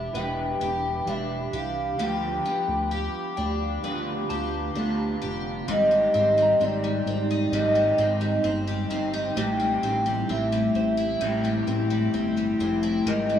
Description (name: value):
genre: dream pop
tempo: 65 BPM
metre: 4/4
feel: straight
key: unclear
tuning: A4 = 440 Hz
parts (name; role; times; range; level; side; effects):
- hollow clarinet-like synth lead; melody; 0.0-13.4 s; D5 to G5; -25 LUFS; equal; chorus, digital delay
- electric guitar at the edge of break-up; accompaniment; 0.0-13.4 s; A2 to G4; -32 LUFS; right 3 dB; harmonic tremolo, ensemble chorus
- warbly tape-like pad; sustained chords; 0.0-13.4 s; A3 to D6; -30 LUFS; left 2 dB; chorus, built-in reverb
- picked twelve-string acoustic guitar; arpeggios; 0.0-13.4 s; F3 to G4; -31 LUFS; left 3 dB; analog chorus, digital delay
- chorused synth bass; bass; 0.0-13.4 s; E1 to D2; -30 LUFS; right 1 dB; none
- soft synth bell; texture; 0.1-13.4 s; Eb4 to C6; -40 LUFS; right 2 dB; none
room: wet plate reverb, RT60 3.5 s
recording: none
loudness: -22 LUFS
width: side -9 dB against mid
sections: 0.0-5.7 A section; 5.7-13.4 B section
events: none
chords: 0.0 Em7; 2.0 G7/D; 5.7 Abmaj7; 9.4 Am7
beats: 0.14 1.06 | 1.99 2.91 3.83 4.76 | 5.68 6.60 7.53 8.45 | 9.37 10.29 11.22 12.14 | 13.06